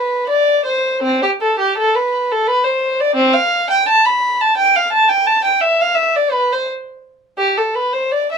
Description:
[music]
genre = classical, baroque-style suite movement for unaccompanied violin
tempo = 85 BPM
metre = 3/4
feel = rubato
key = unclear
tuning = A4 = 440 Hz
[part]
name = dark violin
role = solo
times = 0.0-8.4 s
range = C4 to B5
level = -13 LUFS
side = equal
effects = none
[sound]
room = light reverb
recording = minimal, uncompressed stereo recording, lossy compression artefacts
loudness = -13 LUFS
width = side -6 dB against mid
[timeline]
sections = 0.0-8.4 A section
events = none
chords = none

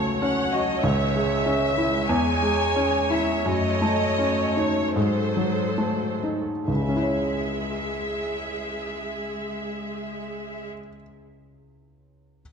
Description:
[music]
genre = classical, romantic movement for piano and orchestra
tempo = 63-97 BPM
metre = 4/4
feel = rubato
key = C# minor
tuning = A4 = 439 Hz
[part]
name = clear baby grand piano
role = melody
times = 0.0-12.4 s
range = C#2 to C#5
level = -24 LUFS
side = equal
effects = none
[part]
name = rich symphonic violin section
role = melody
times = 0.0-10.7 s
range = B#4 to G#5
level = -29 LUFS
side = equal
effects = none
[part]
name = rich studio viola section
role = accompaniment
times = 0.0-10.7 s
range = F#3 to E5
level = -30 LUFS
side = equal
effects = none
[sound]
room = wet scoring stage reverb, RT60 1.9 s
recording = dark, warm production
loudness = -22 LUFS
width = side -6 dB against mid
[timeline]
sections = 0.0-6.7 A section; 6.7-9.9 B section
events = slowing down 0.0-6.7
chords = 0.0 F#m/C#; 0.8 C#m; 2.1 C#m/E; 3.5 D#m7b5/F#; 5.0 G#7b9; 6.7 C#m

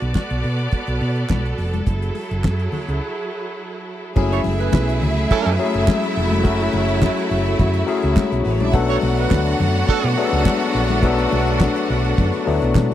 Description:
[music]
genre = disco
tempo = 105 BPM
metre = 4/4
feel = straight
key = F# minor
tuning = A4 = 440 Hz
[part]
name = clear studio string section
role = sustained chords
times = 0.0-12.9 s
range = F#3 to D5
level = -26 LUFS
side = right 2 dB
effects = none
[part]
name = hollow-body short-scale fingered electric bass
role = bass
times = 0.0-12.9 s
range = E#1 to B2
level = -21 LUFS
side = right 1 dB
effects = none
[part]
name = damped 70s drum kit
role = drums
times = 0.0-12.9 s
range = crash cymbal, hi-hat, kick drum, snare drum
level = -17 LUFS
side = right 1 dB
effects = none
[part]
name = congas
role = percussion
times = 0.2-12.9 s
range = none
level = -27 LUFS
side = left 5 dB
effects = none
[part]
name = group handclap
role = percussion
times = 0.2-12.9 s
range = none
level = -34 LUFS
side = right 8 dB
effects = none
[part]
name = bright studio violin section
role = second line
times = 4.2-12.9 s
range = B3 to F#5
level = -25 LUFS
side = right 1 dB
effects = tape echo
[part]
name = barky tine electric piano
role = accompaniment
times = 4.2-12.9 s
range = F#3 to A4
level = -21 LUFS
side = left 6 dB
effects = overdrive
[part]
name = warm horn section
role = stabs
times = 4.3-10.1 s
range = C#4 to C#5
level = -23 LUFS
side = right 9 dB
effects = none
[sound]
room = little or no reverb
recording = dry, close 1970s-style studio recording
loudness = -17 LUFS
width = side -12 dB against mid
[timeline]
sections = 0.0-4.2 A section; 4.2-12.9 B section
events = break 3.0-4.2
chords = 0.0 Bm7; 1.9 F#m9

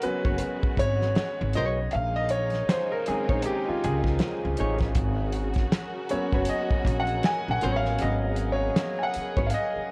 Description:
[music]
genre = R&B, neo-soul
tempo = 79 BPM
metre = 4/4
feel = swing 59% on 16ths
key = G# minor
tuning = A4 = 439 Hz
[part]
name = clear grand piano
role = accompaniment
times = 0.0-9.9 s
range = D#3 to G#5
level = -30 LUFS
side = equal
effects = none
[part]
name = warm studio string section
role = sustained chords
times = 0.0-9.9 s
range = C#3 to A#4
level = -38 LUFS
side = equal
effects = none
[part]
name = upright bass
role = bass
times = 0.0-9.8 s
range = F#1 to C#2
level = -32 LUFS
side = equal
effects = tube saturation
[part]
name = warm soul drum kit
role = drums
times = 0.0-9.7 s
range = hi-hat, kick drum, snare drum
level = -30 LUFS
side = equal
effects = none
[part]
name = flamenco guitar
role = second line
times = 0.3-9.5 s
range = D#4 to C#5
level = -35 LUFS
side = equal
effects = none
[sound]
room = light reverb, small room ambience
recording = worn, warbling old tape, cassette tape, warbly pitch drift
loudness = -26 LUFS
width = mono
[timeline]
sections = 0.0-9.9 A section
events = grand piano solo 0.0-9.9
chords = 0.0 G#m11; 1.9 A#m11; 5.0 G#m11

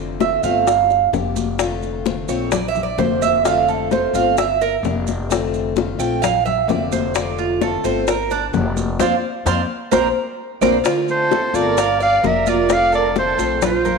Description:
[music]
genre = latin, Cuban son and guajira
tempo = 130 BPM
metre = 4/4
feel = straight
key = F major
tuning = A4 = 440 Hz
[part]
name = picked plugged-in steel-string acoustic guitar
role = accompaniment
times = 0.0-13.7 s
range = D3 to G4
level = -25 LUFS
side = left 8 dB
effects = none
[part]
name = upright bass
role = bass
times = 0.0-14.0 s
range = F1 to F2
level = -26 LUFS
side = equal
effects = none
[part]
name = Cuban tres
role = arpeggios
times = 0.2-14.0 s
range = D4 to G5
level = -19 LUFS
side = right 7 dB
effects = none
[part]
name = bongos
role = percussion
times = 0.2-14.0 s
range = none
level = -25 LUFS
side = left 9 dB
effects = none
[part]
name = congas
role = percussion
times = 0.2-14.0 s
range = none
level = -26 LUFS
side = left 11 dB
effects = none
[part]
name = maracas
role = percussion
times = 0.2-14.0 s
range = none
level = -34 LUFS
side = right 11 dB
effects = none
[part]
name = warm clarinet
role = melody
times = 11.1-14.0 s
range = C5 to F5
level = -18 LUFS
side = right 1 dB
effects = none
[part]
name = warm studio violin section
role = second line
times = 11.1-14.0 s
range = F4 to D5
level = -24 LUFS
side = right 8 dB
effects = none
[sound]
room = wet echo chamber reverb, RT60 1.7 s, small room ambience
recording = 1960s-style stereo with parts hard left and right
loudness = -16 LUFS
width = side -4 dB against mid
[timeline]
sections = 0.0-10.8 A section; 10.8-14.0 B section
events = Cuban tres solo 0.0-10.8; band accent 9.0-10.8; drum fill 10.6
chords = 0.0 F6; 0.7 Gm7; 1.6 F6; 2.5 Bbadd9; 3.4 F6; 4.4 Gm7; 5.3 F6; 6.2 Bbadd9; 7.1 F6; 8.1 Gm7; 9.0 F5; 9.9 Bbadd9; 10.8 F6; 11.8 Gm7; 12.7 F6

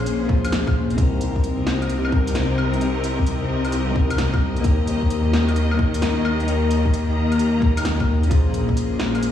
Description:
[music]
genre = future garage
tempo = 131 BPM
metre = 4/4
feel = swing 66% on 16ths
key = unclear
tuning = A4 = 441 Hz
[part]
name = clean electric guitar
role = accompaniment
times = 0.0-9.3 s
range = Bb3 to C5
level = -25 LUFS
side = left 5 dB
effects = spring reverb, sidechain pumping, tape echo
[part]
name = clear symphonic string section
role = sustained chords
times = 0.0-9.3 s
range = Bb2 to Bb5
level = -27 LUFS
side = right 1 dB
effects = sidechain pumping
[part]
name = dark detuned saw bass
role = bass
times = 0.0-9.3 s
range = Bb1 to Eb2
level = -22 LUFS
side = equal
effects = sidechain pumping
[part]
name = garage drum kit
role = drums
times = 0.1-9.3 s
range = claves, hi-hat, snare drum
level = -27 LUFS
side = equal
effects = none
[part]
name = electronic kick drum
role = drums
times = 0.3-8.8 s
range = none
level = -20 LUFS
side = equal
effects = none
[sound]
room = light reverb, digital ambience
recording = played on a big sound system in a bare room, stone room reverb, vinyl crackle, small room ambience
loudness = -18 LUFS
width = side -10 dB against mid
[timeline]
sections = 0.0-9.3 A section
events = none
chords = 0.0 Bbm7; 1.0 Cm7; 4.6 Eb; 8.3 Bbm7

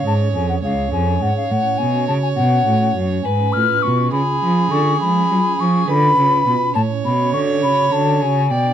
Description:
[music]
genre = classical, baroque-style sonata movement with continuo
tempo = 68 BPM (dotted quarters)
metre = 12/8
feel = rubato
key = F# minor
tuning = A4 = 442 Hz
[part]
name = mellow hollow concert flute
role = melody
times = 0.0-8.7 s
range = E#5 to E#6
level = -18 LUFS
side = left 4 dB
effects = none
[part]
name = warm violin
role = second line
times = 0.0-8.7 s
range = G#4 to D5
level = -23 LUFS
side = right 6 dB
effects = none
[part]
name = pipe organ, stopped flute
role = accompaniment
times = 0.0-8.7 s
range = C#2 to G#4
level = -24 LUFS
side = right 1 dB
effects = none
[part]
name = warm cello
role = bass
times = 0.0-8.7 s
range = C#2 to F#3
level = -19 LUFS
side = right 1 dB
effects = none
[sound]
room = light reverb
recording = dark, warm production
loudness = -15 LUFS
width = side -9 dB against mid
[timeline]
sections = 0.0-8.7 A section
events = none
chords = 0.0 C#; 1.5 F#m/A; 3.2 C#7/G#; 6.8 F#m/A

